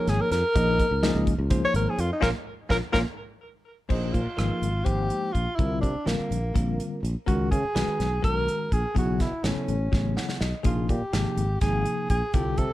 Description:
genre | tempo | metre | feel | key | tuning
electric jazz fusion | 249 BPM (eighths) | 7/8 | straight | unclear | A4 = 439 Hz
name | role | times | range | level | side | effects
mellow tenor saxophone | melody | 0.0-12.7 s | Bb3 to Db5 | -28 LUFS | equal | none
bell-like tine electric piano | accompaniment | 0.0-12.6 s | C3 to F#5 | -30 LUFS | left 2 dB | fast stereo tremolo
sustaining fretless electric bass | bass | 0.1-12.7 s | Ab1 to Db3 | -27 LUFS | equal | none
modern studio drum kit | drums | 0.1-12.7 s | crash cymbal, hi-hat, kick drum, rim click, snare drum | -28 LUFS | equal | none
room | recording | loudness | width
little or no reverb | dark, warm production | -23 LUFS | side -16 dB against mid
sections
0.0-3.9 A section; 3.9-12.7 B section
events
tenor saxophone solo 0.0-3.9; band accent 2.2-3.9; drum fill 3.2-3.9, 9.9-10.7; tine electric piano fill 9.9-10.7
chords
0.0 Bbm7; 3.9 Bb13sus4; 5.6 C9sus4; 7.3 Db13sus4; 9.0 B13sus4; 10.7 Bb13sus4

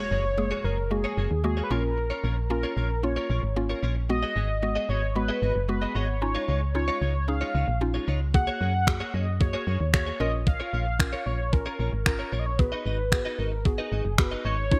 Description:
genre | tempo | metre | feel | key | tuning
dance-pop | 113 BPM | 4/4 | straight | unclear | A4 = 440 Hz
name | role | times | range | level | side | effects
warm velvety synth lead | melody | 0.0-14.8 s | G#4 to F#5 | -33 LUFS | equal | chorus, delay
mallet-like synth pluck | accompaniment | 0.0-14.8 s | G#3 to A#4 | -35 LUFS | equal | chorus, phaser, sidechain pumping
direct-recorded clean electric guitar | riff | 0.0-14.8 s | G#3 to D#5 | -37 LUFS | equal | ensemble chorus
impact | sound effects | 0.0-2.0 s | none | -49 LUFS | equal | none
solid FM bass | bass | 0.1-14.8 s | F#1 to F#2 | -30 LUFS | equal | sidechain pumping
crisp 8-bit digital drum machine | drums | 8.3-14.8 s | finger snaps, kick drum | -26 LUFS | equal | overdrive, gated reverb
room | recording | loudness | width
light reverb | bright 1980s-style digital production | -27 LUFS | mono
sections
0.0-14.8 A section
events
impact 0.0-2.0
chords
0.0 F#add9; 1.7 A#m; 4.1 G#m7; 6.2 C#add9; 8.3 F#add9; 10.2 A#m; 12.6 G#m7

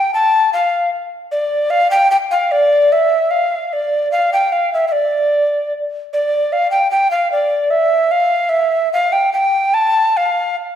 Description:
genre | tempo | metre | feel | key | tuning
medieval | 150 BPM | 3/4 | straight | D minor | A4 = 441 Hz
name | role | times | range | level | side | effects
breathy mellow tenor recorder | solo | 0.0-10.6 s | D5 to A5 | -13 LUFS | equal | none
room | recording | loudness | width
wet recital hall reverb, RT60 1.6 s | recorded in a church or concert hall | -13 LUFS | side -9 dB against mid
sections
0.0-6.1 A section; 6.1-10.8 A section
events
none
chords
none

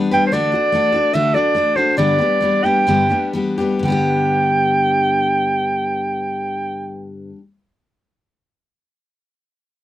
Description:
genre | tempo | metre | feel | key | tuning
country | 119-149 BPM | 4/4 | straight | G major | A4 = 442 Hz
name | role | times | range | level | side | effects
picked steel-string acoustic guitar | accompaniment | 0.0-7.4 s | G2 to B4 | -19 LUFS | left 3 dB | none
bright clarinet | melody | 0.1-7.1 s | C5 to G5 | -17 LUFS | right 2 dB | none
room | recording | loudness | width
moderate booth ambience, RT60 0.2 s | dry, close 1970s-style studio recording | -15 LUFS | side -13 dB against mid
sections
0.3-3.8 A section; 3.8-7.9 B section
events
slowing down 0.3-3.8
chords
0.3 D; 2.0 G

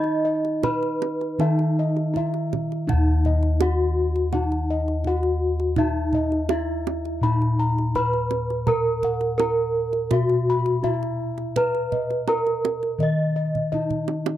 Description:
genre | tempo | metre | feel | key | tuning
Javanese gamelan | 83 BPM | 4/4 | straight | Eb pelog | A4 = 442 Hz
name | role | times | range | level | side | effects
gamelan-type bronze metallophone | melody | 0.0-14.4 s | Eb4 to Eb5 | -24 LUFS | equal | none
gamelan-type bronze metallophone | accompaniment | 0.0-2.9 s | Eb3 to Eb4 | -26 LUFS | right 2 dB | none
gamelan-type bossed gongs | arpeggios | 0.0-14.1 s | Eb5 to Cb6-20c | -30 LUFS | left 4 dB | slapback echo
gamelan-type bossed gongs | bass | 0.0-14.4 s | Eb2 to Eb5 | -25 LUFS | left 1 dB | none
kendang | percussion | 0.0-14.4 s | none | -29 LUFS | right 7 dB | none
room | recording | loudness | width
light reverb | dry, close 1970s-style studio recording | -20 LUFS | side -12 dB against mid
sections
0.0-2.9 A section; 2.9-14.4 B section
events
drum fill 13.5-14.4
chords
none

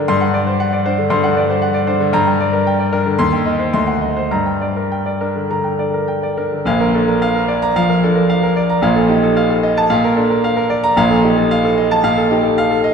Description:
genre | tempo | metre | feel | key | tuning
classical, virtuoso piano study | 100-118 BPM | 4/4 | rubato | Bb major from 6.7 s | A4 = 440 Hz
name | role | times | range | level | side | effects
clear concert grand piano | solo | 0.0-12.9 s | Bb1 to C6 | -13 LUFS | equal | none
room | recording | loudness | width
wet scoring stage reverb, RT60 1.8 s | recorded in a church or concert hall | -13 LUFS | side -6 dB against mid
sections
0.0-6.7 A section; 6.7-12.9 B section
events
none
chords
0.1 D7/G; 2.1 Gm; 3.2 Cm/Eb; 3.7 D7b9; 4.3 Gm; 6.7 Bb; 8.8 F7/Bb; 9.9 Bb; 11.0 F7/Bb

